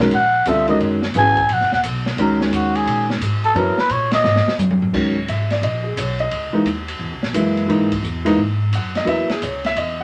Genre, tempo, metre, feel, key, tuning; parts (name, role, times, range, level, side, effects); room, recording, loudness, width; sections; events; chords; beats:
modal jazz; 174 BPM; 4/4; swing 65% on 8ths; C# dorian; A4 = 440 Hz
warm grand piano; accompaniment; 0.0-10.0 s; C#3 to F#5; -21 LUFS; equal
upright bass; bass; 0.0-10.0 s; D#1 to A#2; -27 LUFS; equal
open jazz drum kit; drums; 0.0-9.9 s; crash cymbal, hi-hat, kick drum, ride cymbal, snare drum, toms; -27 LUFS; equal
trumpet with cup mute; melody; 0.1-4.6 s; C#4 to G#5; -19 LUFS; equal
moderate studio ambience, RT60 0.4 s; -19 LUFS; mono
0.0-4.9 A section; 4.9-10.0 A section
muted trumpet solo 0.0-4.9; drum fill 4.2-4.9
0.0 F#6; 4.9 C#m69
0.12 0.46 | 0.81 1.15 1.50 1.84 | 2.18 2.53 2.87 3.22 | 3.56 3.90 4.25 4.59 | 4.94 5.28 5.63 5.97 | 6.32 6.66 7.01 7.35 | 7.70 8.04 8.39 8.73 | 9.08 9.43 9.77